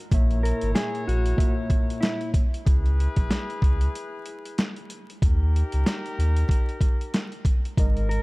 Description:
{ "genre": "hip hop, boom-bap hip-hop", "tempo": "94 BPM", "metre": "4/4", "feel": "swing 58% on 16ths", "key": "unclear", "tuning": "A4 = 435 Hz", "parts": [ { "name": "mellow tine electric piano", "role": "accompaniment", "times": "0.1-2.4, 7.8-8.2 s", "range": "G#2 to E5", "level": "-32 LUFS", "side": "equal", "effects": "medium stereo tremolo, cassette tape, high-pass filter, low-pass filter" }, { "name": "warm horn section", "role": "stabs", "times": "0.1-8.2 s", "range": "D#4 to C#5", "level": "-36 LUFS", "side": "left 2 dB", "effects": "high-pass filter, low-pass filter, digital delay" }, { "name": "warm sub bass", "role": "bass", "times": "0.1-8.2 s", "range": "G#1 to D#2", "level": "-22 LUFS", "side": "equal", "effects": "none" }, { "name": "boom bap sampler-style drum kit", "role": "drums", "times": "0.1-8.2 s", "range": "hi-hat, kick drum, snare drum", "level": "-23 LUFS", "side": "equal", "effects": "none" }, { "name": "mellow electric guitar", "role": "melody", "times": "0.4-2.3, 8.1-8.2 s", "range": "E4 to A#4", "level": "-32 LUFS", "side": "equal", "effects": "high-pass filter, low-pass filter" } ], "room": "little or no reverb", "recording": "dark, warm production, vinyl crackle", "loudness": "-21 LUFS", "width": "side -24 dB against mid", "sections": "0.0-8.2 A section", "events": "none", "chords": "0.1 A#dim; 2.7 C#m7; 5.2 D#" }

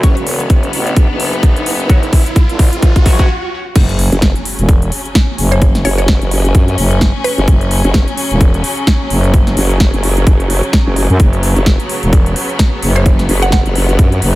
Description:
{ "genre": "bass house", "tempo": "129 BPM", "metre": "4/4", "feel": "swing 58% on 16ths", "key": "unclear", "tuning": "A4 = 440 Hz", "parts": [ { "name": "mallet-like synth pluck", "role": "melody", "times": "0.0-0.2, 5.5-7.6, 13.0-13.6 s", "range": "B4 to F#5", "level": "-21 LUFS", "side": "right 2 dB", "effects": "chorus, phaser, digital delay" }, { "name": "clear studio string section", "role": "sustained chords", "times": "0.0-14.4 s", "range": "C#3 to C#4", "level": "-21 LUFS", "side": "left 1 dB", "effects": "sidechain pumping" }, { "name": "band-passed chord stab", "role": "stabs", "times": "0.0-3.3 s", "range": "F#3 to C#5", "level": "-25 LUFS", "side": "left 1 dB", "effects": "phaser, sidechain pumping, digital delay" }, { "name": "growling FM bass", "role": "bass", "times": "0.0-14.4 s", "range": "E1 to F#2", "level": "-15 LUFS", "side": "equal", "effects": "overdrive, sidechain pumping, high-pass filter" }, { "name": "big-room dance drum kit", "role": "drums", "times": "0.0-14.3 s", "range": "crash cymbal, hi-hat, snare drum", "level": "-19 LUFS", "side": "equal", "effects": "overdrive, studio reverb" }, { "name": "electronic kick drum", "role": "drums", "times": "0.0-14.1 s", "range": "none", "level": "-10 LUFS", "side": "equal", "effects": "studio reverb" }, { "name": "riser and impact", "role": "sound effects", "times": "0.0-5.6 s", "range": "none", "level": "-22 LUFS", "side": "right 1 dB", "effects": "none" }, { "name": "formant-sweep wobble bass", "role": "bass", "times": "4.1-14.2 s", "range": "F#1 to F#2", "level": "-13 LUFS", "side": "equal", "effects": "chorus, overdrive, sidechain pumping" } ], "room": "little or no reverb", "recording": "none", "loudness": "-10 LUFS", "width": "side -18 dB against mid", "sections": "0.0-3.8 A section; 3.8-14.4 B section", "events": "build-up 0.0-3.8; riser 0.0-3.3; filter sweep on synth stab 0.0-3.8; drum fill 0.0-3.3; stop 3.3-3.8; drop 3.8-14.4; impact 3.8-5.6", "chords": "0.0 F#5" }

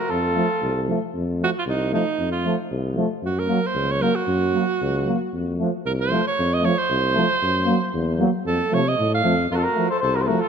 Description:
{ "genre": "balkan folk", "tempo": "115 BPM", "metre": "2/4", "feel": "swing 54% on 16ths", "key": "F phrygian dominant", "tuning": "A4 = 440 Hz", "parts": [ { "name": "warm flugelhorn", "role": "melody", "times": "0.0-0.9, 9.5-10.5 s", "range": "A4 to C5", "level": "-23 LUFS", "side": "left 1 dB", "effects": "none" }, { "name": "clear alto saxophone", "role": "second line", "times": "0.0-10.5 s", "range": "Eb4 to F5", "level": "-24 LUFS", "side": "right 4 dB", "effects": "none" }, { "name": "warm tuba", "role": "bass", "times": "0.1-10.3 s", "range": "C2 to C3", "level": "-25 LUFS", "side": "left 1 dB", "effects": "none" }, { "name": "clear euphonium", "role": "accompaniment", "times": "0.3-10.4 s", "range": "A3 to Bb3", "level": "-28 LUFS", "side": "left 6 dB", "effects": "none" }, { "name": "warm trombone", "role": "accompaniment", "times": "0.4-10.4 s", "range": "F3 to Gb3", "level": "-27 LUFS", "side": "right 7 dB", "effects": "none" } ], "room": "moderate concert hall reverb, RT60 2.4 s", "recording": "none", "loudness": "-19 LUFS", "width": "side -7 dB against mid", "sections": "0.0-1.1 A section; 1.1-9.5 B section", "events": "alto saxophone solo 1.1-9.5", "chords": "0.0 F; 3.2 Gb; 5.3 F; 7.4 Gb; 8.5 F" }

